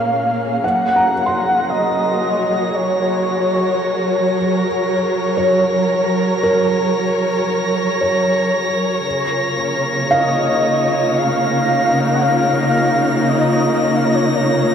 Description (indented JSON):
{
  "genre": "ambient",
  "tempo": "57 BPM",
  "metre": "4/4",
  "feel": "straight",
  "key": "Gb lydian",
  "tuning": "A4 = 441 Hz",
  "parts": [
    { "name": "breathy flute-like synth lead", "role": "melody", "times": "0.0-14.7 s", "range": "Db5 to Gb5", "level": "-19 LUFS", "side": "equal", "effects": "tremolo, ensemble chorus, diffuse ambient delay" },
    { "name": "warm studio string section", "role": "sustained chords", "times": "0.0-14.7 s", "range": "Bb2 to Db5", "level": "-18 LUFS", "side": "equal", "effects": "none" },
    { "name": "felt-muted upright piano", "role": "arpeggios", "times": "0.0-14.7 s", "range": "Bb4 to C6", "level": "-22 LUFS", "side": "right 1 dB", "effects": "diffuse ambient delay" },
    { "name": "drifting glass-harmonics texture", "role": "texture", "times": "1.1-14.7 s", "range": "Bb6", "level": "-26 LUFS", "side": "right 2 dB", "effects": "chorus, built-in reverb" }
  ],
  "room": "wet cathedral reverb, RT60 5.9 s",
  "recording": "none",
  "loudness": "-14 LUFS",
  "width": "side -8 dB against mid",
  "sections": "0.6-14.7 A section",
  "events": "none",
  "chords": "0.0 Bbm7; 0.6 Gbadd9; 9.1 Db6"
}